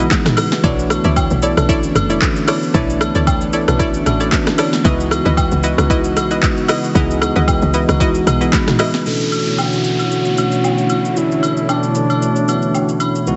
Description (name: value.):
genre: amapiano.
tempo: 114 BPM.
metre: 4/4.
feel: swing 55% on 16ths.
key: B dorian.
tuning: A4 = 440 Hz.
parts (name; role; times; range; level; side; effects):
bell-like tine electric piano; accompaniment; 0.0-13.4 s; C#2 to B5; -21 LUFS; equal; phaser, low-pass filter.
warm analog pad; sustained chords; 0.0-13.4 s; C#2 to D#5; -26 LUFS; equal; chorus, low-pass filter.
analog pluck; stabs; 0.0-8.9 s; E4 to D#5; -24 LUFS; equal; chorus, delay.
woody log drum bass; bass; 0.0-8.5 s; F#1 to D2; -21 LUFS; equal; none.
deep house drum kit; drums; 0.1-13.4 s; handclaps, hi-hat, kick drum, rim click, shaker, snare drum, toms; -21 LUFS; equal; overdrive.
agogo bells and woodblock; percussion; 0.4-13.1 s; none; -26 LUFS; equal; none.
breathy alto saxophone; melody; 9.1-13.0 s; D4 to A4; -23 LUFS; equal; low-pass filter, delay.
downlifter; sound effects; 9.1-13.3 s; none; -29 LUFS; equal; none.
room: moderate lush hall reverb, RT60 2.2 s.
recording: heavily compressed radio sound, nothing above 8.0 kHz.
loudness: -16 LUFS.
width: mono.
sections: 0.0-9.1 A section; 9.1-13.4 B section.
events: drop 0.0-9.1; tine electric piano fill 8.3-9.1, 12.5-13.3; filter sweep 9.1-13.4.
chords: 0.0 C#m11; 0.6 Bm11; 4.8 C#m11; 9.1 Bm11.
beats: 0.11 | 0.64 1.16 1.69 2.22 | 2.74 3.27 3.80 4.32 | 4.85 5.37 5.90 6.43 | 6.95 7.48 8.01 8.53 | 9.06 9.59 10.11 10.64 | 11.16 11.69 12.22 12.74 | 13.27.